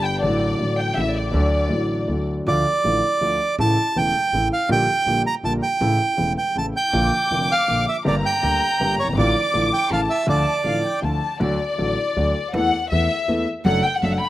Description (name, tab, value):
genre	tango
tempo	162 BPM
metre	3/4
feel	rubato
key	D harmonic minor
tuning	A4 = 440 Hz
part	warm chamber violin section	second line	0.0-2.3, 6.9-14.3 s	D5 to D6	-24 LUFS	left 3 dB	slapback echo
part	warm concert grand piano	accompaniment	0.0-14.2 s	E1 to A4	-23 LUFS	left 1 dB	slapback echo
part	upright bass	bass	0.0-14.2 s	E1 to E2	-26 LUFS	right 1 dB	none
part	bandoneon	melody	2.5-11.0 s	C#5 to Bb5	-20 LUFS	right 3 dB	slapback echo
room	little or no reverb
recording	recorded outdoors, with no room sound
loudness	-18 LUFS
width	side -14 dB against mid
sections	0.0-2.5 A section; 2.5-11.4 B section; 11.4-14.3 A section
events	violin section solo 0.0-2.5, 11.4-14.3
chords	0.2 D/A; 1.0 A; 1.3 D; 2.5 Dm; 3.6 A; 4.7 Gm/Bb; 5.8 A; 6.9 Bb; 8.1 Gm; 9.2 Dm/A; 9.9 A; 10.3 Dm; 11.4 D; 12.5 Asus2/E; 13.6 D/F#